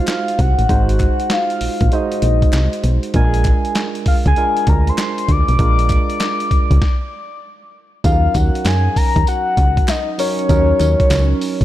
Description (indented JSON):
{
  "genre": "R&B, new jack swing",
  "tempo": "98 BPM",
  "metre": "4/4",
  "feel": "swing 65% on 16ths",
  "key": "Eb dorian",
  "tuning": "A4 = 440 Hz",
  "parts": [
    { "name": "soft octave-layered synth lead", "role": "melody", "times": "0.0-11.6 s", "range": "Db5 to D6", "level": "-20 LUFS", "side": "left 2 dB", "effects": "chorus, phaser" },
    { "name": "tine electric piano", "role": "accompaniment", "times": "0.0-11.6 s", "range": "Gb3 to C5", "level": "-24 LUFS", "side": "right 6 dB", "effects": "none" },
    { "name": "boom bap sampler-style drum kit", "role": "drums", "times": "0.1-11.6 s", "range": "handclaps, hi-hat, kick drum, snare drum, tambourine", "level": "-18 LUFS", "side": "equal", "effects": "none" },
    { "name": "group handclap", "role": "percussion", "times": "0.1-11.3 s", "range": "none", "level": "-35 LUFS", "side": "left 3 dB", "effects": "none" },
    { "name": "solid FM bass", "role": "bass", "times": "0.4-11.6 s", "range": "Ab1 to Gb2", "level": "-16 LUFS", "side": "equal", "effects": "none" }
  ],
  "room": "digital ambience",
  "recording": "dark, warm production",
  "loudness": "-13 LUFS",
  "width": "side -14 dB against mid",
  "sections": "0.0-8.0 A section; 8.0-11.6 B section",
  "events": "stop 6.8-8.0",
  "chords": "0.0 Ab7; 3.1 Bb7; 8.0 Ebm7"
}